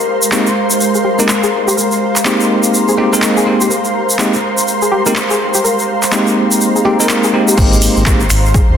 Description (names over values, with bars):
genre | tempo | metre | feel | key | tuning
deep house | 124 BPM | 4/4 | swing 61% on 16ths | Ab major | A4 = 441 Hz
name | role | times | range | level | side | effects
warbly tape-like pad | sustained chords | 0.0-7.5 s | Ab3 to F5 | -21 LUFS | left 2 dB | chorus, built-in reverb, sidechain pumping
analog string pad | texture | 0.0-8.8 s | C5 to C6 | -22 LUFS | right 2 dB | ensemble chorus, sidechain pumping
ethereal airy pad | texture | 0.0-8.8 s | Ab3 to Bb5 | -20 LUFS | equal | ensemble chorus, built-in reverb, sidechain pumping
egg shaker | percussion | 0.2-8.7 s | none | -18 LUFS | equal | none
bell-like tine electric piano | stabs | 0.3-8.2 s | Ab3 to Bb4 | -16 LUFS | equal | fast stereo tremolo, sidechain pumping, dub echo
deep house drum kit | drums | 0.3-8.4 s | crash cymbal, finger snaps, handclaps, hi-hat | -20 LUFS | equal | overdrive, low-pass filter on snare, low-pass filter on cymbals, low-pass filter on hats
soft round pluck | arpeggios | 0.9-8.6 s | G4 to C5 | -19 LUFS | left 2 dB | chorus, sidechain pumping, dub echo
round analog bass | bass | 7.6-8.8 s | Ab1 to Eb2 | -14 LUFS | equal | sidechain pumping
electronic kick drum | drums | 7.6-8.7 s | none | -12 LUFS | equal | overdrive
room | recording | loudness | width
moderate lush hall reverb, RT60 1.5 s, digital ambience | dense, heavily limited modern master | -10 LUFS | side -8 dB against mid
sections
0.0-7.6 A section; 7.6-8.8 B section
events
filter sweep on ambient pad 0.0-7.6; filter sweep on synth arpeggio sound 0.0-7.6; drop 7.6-8.8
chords
0.0 Abmaj9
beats
0.32 0.80 1.29 | 1.77 2.25 2.74 3.22 | 3.71 4.19 4.67 5.16 | 5.64 6.12 6.61 7.09 | 7.58 8.06 8.54